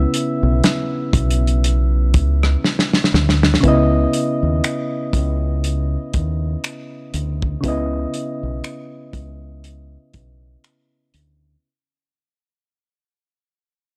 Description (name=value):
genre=contemporary R&B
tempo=60 BPM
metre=4/4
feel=swing 58% on 16ths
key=C# minor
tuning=A4 = 441 Hz
part: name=soft electric-piano-like synth keys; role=accompaniment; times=0.0-11.7 s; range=C#3 to E5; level=-24 LUFS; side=equal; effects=chorus, low-pass filter
part: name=deep dub fingered electric bass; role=bass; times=0.0-11.6 s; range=B1 to D#2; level=-21 LUFS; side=equal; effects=none
part: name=warm soul drum kit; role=drums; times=0.1-11.4 s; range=finger snaps, hi-hat, kick drum, rim click, snare drum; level=-20 LUFS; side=equal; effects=none
room=small room ambience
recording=dry, gritty hardware recording, transformer saturation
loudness=-18 LUFS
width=mono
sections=0.0-3.6 A section; 3.6-11.6 B section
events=drum fill 2.6-3.6; fade-out 3.6-11.6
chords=0.0 C#m7; 3.6 C#m9